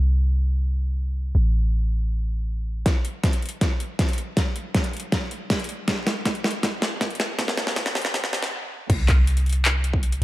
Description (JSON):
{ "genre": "future bass", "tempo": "159 BPM", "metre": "4/4", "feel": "half-time", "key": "unclear", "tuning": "A4 = 440 Hz", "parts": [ { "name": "warm 808-style bass", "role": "bass", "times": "0.0-2.8, 8.9-10.2 s", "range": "A1 to C2", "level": "-20 LUFS", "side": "equal", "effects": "tube saturation, sidechain pumping" }, { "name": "dubstep drum kit", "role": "drums", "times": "2.9-10.2 s", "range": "crash cymbal, handclaps, hi-hat, snare drum", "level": "-25 LUFS", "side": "equal", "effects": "overdrive" }, { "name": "electronic kick drum", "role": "drums", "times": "2.9-10.0 s", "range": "none", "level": "-23 LUFS", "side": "equal", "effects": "overdrive" } ], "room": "light reverb", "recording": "dark, warm production, high-pass filter", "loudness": "-21 LUFS", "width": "side -16 dB against mid", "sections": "0.0-2.9 A section; 2.9-8.9 B section; 8.9-10.2 C section", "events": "build-up 2.9-8.9; drum fill 2.9-8.5; filter sweep 2.9-8.9; stop 8.5-8.9; drop 8.9-10.2", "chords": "none" }